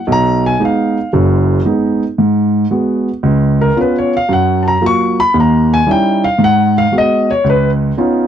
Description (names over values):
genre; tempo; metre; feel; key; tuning
solo jazz; 114 BPM; 4/4; swing 67% on 8ths; unclear; A4 = 445 Hz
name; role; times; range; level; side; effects
dark baby grand piano; solo; 0.0-8.3 s; F#1 to C#6; -10 LUFS; equal; none
room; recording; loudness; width
light reverb; dry, close 1970s-style studio recording; -10 LUFS; side -9 dB against mid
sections
0.0-8.3 A section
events
grand piano solo 0.0-8.3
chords
0.1 B6; 2.2 G#m7; 3.2 C#7; 4.3 F#maj7; 5.3 D#7b9; 6.4 G#m7; 7.4 C#9